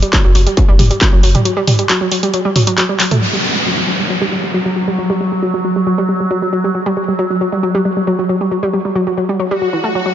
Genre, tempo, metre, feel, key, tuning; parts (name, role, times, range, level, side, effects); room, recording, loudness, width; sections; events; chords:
driving peak-time techno; 136 BPM; 4/4; straight; A4 = 439 Hz
analog pluck; riff; 0.0-10.1 s; E3 to A3; -16 LUFS; equal; chorus, overdrive, sidechain pumping, digital delay
warm sub bass; bass; 0.0-1.3 s; F#1; -14 LUFS; equal; overdrive, sidechain pumping, low-pass filter
techno drum kit; drums; 0.0-3.2 s; handclaps, hi-hat, toms; -16 LUFS; right 1 dB; sidechain pumping on hats, sidechain pumping on toms
electronic kick drum; drums; 0.1-1.1 s; -12 LUFS; equal; distortion
overtone-sweeping drone; drone; 4.1-10.1 s; F#3; -19 LUFS; right 1 dB; chorus, built-in reverb, sidechain pumping
downlifter and swell; sound effects; 3.2-10.1 s; -19 LUFS; equal
light reverb, digital ambience; nothing above 7.5 kHz; -12 LUFS; side -10 dB against mid
0.0-3.2 A section; 3.2-10.1 B section
break 1.5-3.2; drum fill 3.0; band accent 3.0; filter sweep on synth arpeggio sound 3.2-10.1; swell 9.5-10.1
0.0 N.C.; 3.2 Emadd9 (rootless)